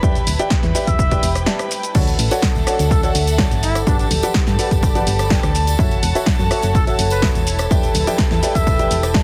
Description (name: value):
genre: piano house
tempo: 125 BPM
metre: 4/4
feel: straight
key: unclear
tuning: A4 = 441 Hz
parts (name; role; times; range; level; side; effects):
- warm chamber violin section; sustained chords; 0.0-9.2 s; A4 to B5; -28 LUFS; equal; sidechain pumping
- warm upright piano; riff; 0.0-9.2 s; F#4 to A5; -26 LUFS; equal; sidechain pumping, tape echo
- solid FM bass; bass; 0.0-9.2 s; D1 to G2; -23 LUFS; equal; sidechain pumping
- electronic kick drum; drums; 0.0-9.2 s; none; -20 LUFS; equal; none
- punchy analog drum machine; drums; 0.0-9.2 s; crash cymbal, hi-hat, rim click, shaker, snare drum; -25 LUFS; equal; none
- rich studio string section; texture; 0.0-9.2 s; D4 to B5; -32 LUFS; equal; sidechain pumping
- mellow trumpet; melody; 0.9-9.0 s; D4 to E5; -28 LUFS; equal; tape echo
- tambourine and congas; percussion; 1.9-9.2 s; none; -34 LUFS; equal; none
room: light reverb, small room ambience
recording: heavily compressed radio sound, multiband compression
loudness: -17 LUFS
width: mono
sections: 0.0-9.2 A section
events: break 1.5-1.9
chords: 0.0 Em7; 1.9 Dmaj7; 3.6 Gmaj9; 5.8 F#m7; 7.5 Em7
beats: | 0.03 0.51 0.99 1.47 | 1.95 2.43 2.91 3.39 | 3.87 4.35 4.83 5.31 | 5.79 6.27 6.75 7.23 | 7.71 8.19 8.67 9.15